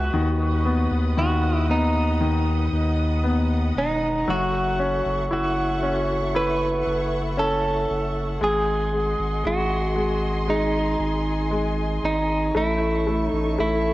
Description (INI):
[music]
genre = pop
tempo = 58 BPM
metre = 4/4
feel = straight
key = unclear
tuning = A4 = 441 Hz
[part]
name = direct-recorded clean electric guitar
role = melody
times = 0.0-13.9 s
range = D#4 to B4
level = -25 LUFS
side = right 2 dB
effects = spring reverb, cassette tape
[part]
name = bright grand piano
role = accompaniment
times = 0.0-13.9 s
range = D#3 to E4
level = -26 LUFS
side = left 2 dB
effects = cassette tape
[part]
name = clear studio string section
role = sustained chords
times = 0.0-13.9 s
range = G#4 to D#6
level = -32 LUFS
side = left 1 dB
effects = cassette tape
[part]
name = saturated sub bass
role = bass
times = 0.0-13.9 s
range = E1 to D#2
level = -25 LUFS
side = equal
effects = none
[part]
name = downlifter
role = sound effects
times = 0.0-4.3 s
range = none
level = barely audible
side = none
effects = none
[sound]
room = light reverb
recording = home recording on cassette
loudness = -20 LUFS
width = side -17 dB against mid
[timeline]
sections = 0.0-13.9 A section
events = none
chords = 0.1 B/D#; 4.3 F#m7; 8.4 G#7; 12.6 A